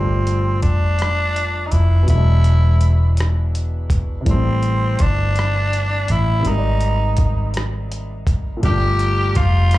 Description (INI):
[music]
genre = slow six-eight R&B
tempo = 55 BPM (dotted quarters)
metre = 6/8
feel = straight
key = G dorian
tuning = A4 = 440 Hz
[part]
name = raspy tenor saxophone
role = melody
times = 0.0-9.8 s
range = C4 to G4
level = -23 LUFS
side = left 1 dB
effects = plate reverb, slapback echo, tape echo
[part]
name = warm concert grand piano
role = accompaniment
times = 0.0-9.8 s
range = Bb2 to D5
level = -26 LUFS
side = equal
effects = plate reverb, slapback echo
[part]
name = vintage muted fingered electric bass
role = bass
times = 0.0-9.8 s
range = E1 to A1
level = -17 LUFS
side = equal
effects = none
[part]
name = dusty soul sampler-style drum kit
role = drums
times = 0.3-9.8 s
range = hi-hat, kick drum, rim click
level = -20 LUFS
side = equal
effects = none
[part]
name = warm horn section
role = stabs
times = 8.6-9.8 s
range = Bb3 to G4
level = -28 LUFS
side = equal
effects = plate reverb, slapback echo
[sound]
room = little or no reverb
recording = live gig heard through the venue's PA, club reverb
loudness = -15 LUFS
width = side -17 dB against mid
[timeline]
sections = 0.0-9.8 A section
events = none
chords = 0.0 Gm9; 2.1 E7; 4.3 Am7; 6.4 Abmaj9#11; 8.6 Gm9